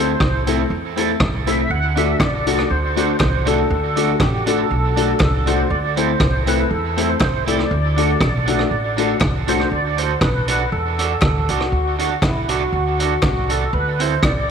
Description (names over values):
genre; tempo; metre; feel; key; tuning
ska; 120 BPM; 4/4; swing 54% on 8ths; D mixolydian; A4 = 440 Hz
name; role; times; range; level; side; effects
tonewheel organ; melody; 0.0-14.5 s; E4 to F#5; -23 LUFS; right 1 dB; overdrive, chorus vibrato, slow rotary speaker
electric guitar at the edge of break-up; accompaniment; 0.0-14.1 s; C4 to A4; -24 LUFS; right 9 dB; lush chorus, tape echo
dark upright piano; stabs; 0.0-9.7 s; A3 to A4; -22 LUFS; left 8 dB; none
upright bass; bass; 0.0-14.5 s; A1 to E2; -22 LUFS; equal; none
street-band drum kit; drums; 0.2-14.4 s; hi-hat, kick drum, rim click; -20 LUFS; equal; none
group handclap; percussion; 2.2-14.4 s; none; -39 LUFS; left 6 dB; none
room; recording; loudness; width
moderate echo chamber reverb, RT60 1.6 s, small room ambience; 1960s-style stereo with parts hard left and right; -16 LUFS; side -7 dB against mid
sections
0.0-9.7 A section; 9.7-14.5 A section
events
none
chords
0.0 Am; 1.7 D; 5.7 Am; 7.7 D; 13.7 Am